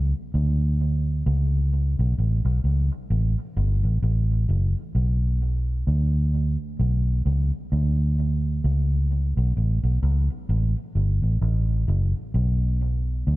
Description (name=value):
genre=reggae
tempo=65 BPM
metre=4/4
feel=swing 58% on 16ths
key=B minor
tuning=A4 = 441 Hz
part: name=vintage muted fingered electric bass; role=solo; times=0.0-13.4 s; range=F#1 to D2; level=-21 LUFS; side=equal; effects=dub echo
room=little or no reverb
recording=dark, warm production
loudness=-21 LUFS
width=side -18 dB against mid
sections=0.0-13.4 A section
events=none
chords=none